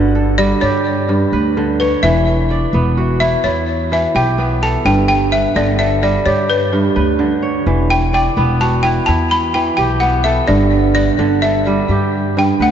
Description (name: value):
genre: west african traditional, West African string and xylophone music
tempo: 85 BPM (dotted quarters)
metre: 12/8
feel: straight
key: G lydian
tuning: A4 = 440 Hz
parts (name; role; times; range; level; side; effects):
- kora; arpeggios; 0.0-12.7 s; G2 to F#5; -16 LUFS; right 3 dB; none
- upright bass; bass; 0.0-12.7 s; E1 to G2; -18 LUFS; left 1 dB; none
- balafon; melody; 0.4-12.7 s; B4 to B5; -17 LUFS; left 1 dB; diffuse ambient delay
room: wet cathedral reverb, RT60 4.9 s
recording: dreamy mix soaked in reverb, nothing above 7.7 kHz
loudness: -12 LUFS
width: side -9 dB against mid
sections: 0.0-12.7 A section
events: balafon solo 0.0-12.7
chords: 0.0 G; 2.0 Em; 4.8 G; 7.7 Em; 10.5 G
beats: 0.62 1.32 | 2.03 2.73 3.44 4.14 | 4.85 5.55 6.26 6.96 | 7.67 8.37 9.08 9.78 | 10.49 11.19 11.89 12.60